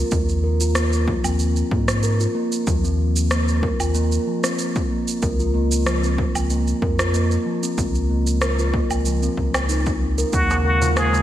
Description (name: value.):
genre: organic downtempo.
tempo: 94 BPM.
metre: 4/4.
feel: swing 54% on 16ths.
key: Bb minor.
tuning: A4 = 440 Hz.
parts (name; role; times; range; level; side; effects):
steel tongue drum; arpeggios; 0.0-11.1 s; F3 to Bb4; -23 LUFS; equal; digital delay.
warm sub bass; bass; 0.0-11.2 s; Db2 to Ab2; -21 LUFS; equal; sidechain pumping.
electronic kick drum; drums; 0.1-10.5 s; none; -25 LUFS; equal; overdrive, studio reverb.
electronic shaker, rim click and woodblock; drums; 0.1-11.2 s; none; -26 LUFS; right 1 dB; studio reverb, gated reverb.
trumpet with plunger mute; melody; 10.3-11.2 s; Gb4 to Ab4; -20 LUFS; equal; none.
airy breathy pad; sustained chords; 10.5-11.2 s; Db3 to F5; -28 LUFS; right 2 dB; chorus, sidechain pumping.
darbuka; percussion; 10.5-11.2 s; none; -30 LUFS; left 1 dB; none.
room: light reverb, studio ambience.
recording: bright 1980s-style digital production.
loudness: -18 LUFS.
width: side -12 dB against mid.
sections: 0.0-11.2 A section.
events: none.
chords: 0.1 Eb5; 5.2 Bbm/Db; 10.3 Eb9sus4.